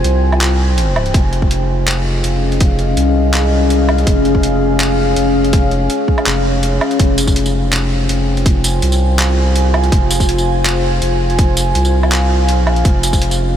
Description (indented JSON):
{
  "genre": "half-time drum and bass",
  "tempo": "164 BPM",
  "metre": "4/4",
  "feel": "half-time",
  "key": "F minor",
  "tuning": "A4 = 441 Hz",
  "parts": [
    { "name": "deep dark ambient pad", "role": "sustained chords", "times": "0.0-13.6 s", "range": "Db4 to Ab5", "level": "-17 LUFS", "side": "left 2 dB", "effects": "chorus, built-in reverb, vintage 12-bit sampler grit, sidechain pumping" },
    { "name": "saturated sub bass", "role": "bass", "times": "0.0-13.6 s", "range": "F1 to C2", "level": "-15 LUFS", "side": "equal", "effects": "tube saturation" },
    { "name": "boom bap sampler-style drum kit", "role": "drums", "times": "0.0-13.4 s", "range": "handclaps, hi-hat, tambourine, woodblock", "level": "-20 LUFS", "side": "right 1 dB", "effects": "overdrive" },
    { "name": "electronic kick drum", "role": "drums", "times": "1.1-13.2 s", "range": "none", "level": "-14 LUFS", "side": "equal", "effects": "overdrive" }
  ],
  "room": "moderate huge ambient reverb, RT60 7.2 s",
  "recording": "dreamy mix soaked in reverb",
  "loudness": "-12 LUFS",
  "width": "side -10 dB against mid",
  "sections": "0.0-13.6 A section",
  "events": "none",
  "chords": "0.0 Fm; 1.1 Db/F; 7.0 Fm; 12.8 Db/F",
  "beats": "0.04 0.41 0.78 | 1.14 1.51 1.87 2.24 | 2.60 2.97 3.34 3.70 | 4.07 4.43 4.80 5.17 | 5.53 5.90 6.26 6.63 | 7.00 7.36 7.73 8.09 | 8.46 8.82 9.19 9.56 | 9.92 10.29 10.65 11.02 | 11.38 11.75 12.12 12.48 | 12.85 13.21"
}